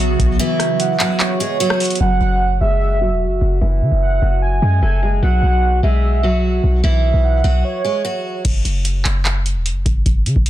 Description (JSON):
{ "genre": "hip hop, trap", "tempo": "149 BPM", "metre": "4/4", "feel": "half-time", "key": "unclear", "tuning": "A4 = 438 Hz", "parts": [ { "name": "picked steel-string acoustic guitar", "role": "melody", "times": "0.0-8.4 s", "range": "E3 to A4", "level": "-21 LUFS", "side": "right 2 dB", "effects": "low-pass filter, digital delay" }, { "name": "warm velvety synth lead", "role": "second line", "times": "0.0-8.4 s", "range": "C#5 to G#5", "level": "-22 LUFS", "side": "right 3 dB", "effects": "chorus, digital delay" }, { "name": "hollow soft pad", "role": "sustained chords", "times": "0.0-2.0 s", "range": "C#3 to F#4", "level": "-23 LUFS", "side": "equal", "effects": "ensemble chorus" }, { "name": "warm 808-style bass", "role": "bass", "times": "0.0-10.5 s", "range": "E1 to C#3", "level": "-16 LUFS", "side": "equal", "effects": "none" }, { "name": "booming analog drum machine", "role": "drums", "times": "0.2-2.0, 8.4-10.5 s", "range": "crash cymbal, handclaps, hi-hat, kick drum, rim click", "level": "-18 LUFS", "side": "equal", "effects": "none" } ], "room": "digital ambience", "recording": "dense, heavily limited modern master", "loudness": "-14 LUFS", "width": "side -13 dB against mid", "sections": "0.0-2.0 A section; 2.0-8.4 B section; 8.4-10.5 C section", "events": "kick muted 0.4-2.0; filter sweep on steel-string acoustic guitar 2.0-8.4; break 7.6-8.4", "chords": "0.0 Bsus2; 2.0 F#7(no3); 5.2 Bsus2; 8.4 F#5", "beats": "| 0.39 0.80 1.20 1.60 | 2.00 2.41 2.81 3.21 | 3.62 4.02 4.42 4.82 | 5.23 5.63 6.03 6.43 | 6.84 7.24 7.64 8.04 | 8.45 8.85 9.25 9.66 | 10.06 10.46" }